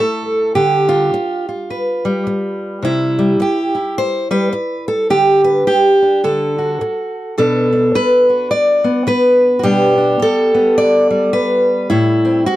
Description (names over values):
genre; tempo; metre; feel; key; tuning
folk, solo fingerstyle acoustic guitar; 106 BPM; 4/4; swing 60% on 8ths; G major; A4 = 442 Hz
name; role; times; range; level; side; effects
fingerpicked steel-string acoustic guitar; solo; 0.0-12.6 s; A2 to D5; -12 LUFS; equal; none
room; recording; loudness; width
light reverb; dry, close 1970s-style studio recording; -12 LUFS; side -15 dB against mid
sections
0.0-12.6 A section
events
none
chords
0.0 Dsus2 (rootless); 0.6 G7/D; 2.8 Cmaj7; 5.1 G5/D; 6.2 D; 7.4 Bm7; 9.6 Gadd9/B; 11.9 Am7